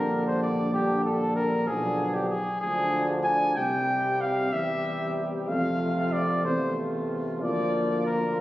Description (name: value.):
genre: classical, brass quintet.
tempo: 63 BPM (dotted quarters).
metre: 6/8.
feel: straight.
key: F major.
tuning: A4 = 438 Hz.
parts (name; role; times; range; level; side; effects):
warm cornet; melody; 0.0-8.4 s; G4 to G#5; -27 LUFS; left 1 dB; none.
warm flugelhorn; second line; 0.0-8.4 s; D4 to G4; -36 LUFS; right 2 dB; none.
clear French horn; accompaniment; 0.0-8.2 s; F3 to Bb3; -33 LUFS; left 1 dB; none.
clear trombone; accompaniment; 0.0-8.4 s; C3 to F3; -34 LUFS; right 2 dB; none.
mellow tuba; bass; 0.0-8.4 s; Bb1 to F2; -30 LUFS; equal; none.
room: wet scoring stage reverb, RT60 1.6 s.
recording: recorded on a phone in the room, club reverb, compression.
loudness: -24 LUFS.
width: side -16 dB against mid.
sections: 0.0-8.4 A section.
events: none.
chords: 0.0 Gm/Bb; 1.7 Bdim7; 3.6 C; 5.5 F; 7.4 Bb/D.